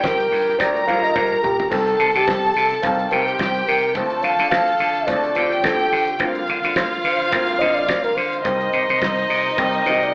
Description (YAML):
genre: disco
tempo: 107 BPM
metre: 4/4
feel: swing 56% on 16ths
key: C dorian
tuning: A4 = 439 Hz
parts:
  - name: breathy flugelhorn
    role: melody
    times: 0.0-10.1 s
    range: G4 to F5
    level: -21 LUFS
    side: equal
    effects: none
  - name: warm studio violin section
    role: second line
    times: 0.0-10.1 s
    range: Eb4 to Bb5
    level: -21 LUFS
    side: equal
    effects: none
  - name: clear baby grand piano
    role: accompaniment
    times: 0.0-10.1 s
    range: D3 to G4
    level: -28 LUFS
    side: equal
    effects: none
  - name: vintage slap bass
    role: bass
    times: 0.0-10.1 s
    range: G1 to D3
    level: -22 LUFS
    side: equal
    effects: none
  - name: damped 70s drum kit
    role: drums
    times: 0.0-10.1 s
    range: crash cymbal, hi-hat, kick drum, snare drum, toms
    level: -30 LUFS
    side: equal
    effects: none
  - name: cowbell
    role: percussion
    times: 0.0-10.0 s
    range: none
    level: -30 LUFS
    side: equal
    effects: none
room: wet large studio reverb, RT60 1.1 s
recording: band playing live in one room, AM radio sound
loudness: -16 LUFS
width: side -29 dB against mid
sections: 0.0-10.1 A section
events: drum fill 1.1-1.7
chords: 0.0 Gm9; 1.7 Cm7; 4.0 Dm7; 6.2 Bb69/D; 8.5 Cm7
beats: 0.03 0.59 1.15 | 1.71 2.27 2.83 3.39 | 3.95 4.52 5.08 5.64 | 6.20 6.77 7.33 7.89 | 8.46 9.02 9.58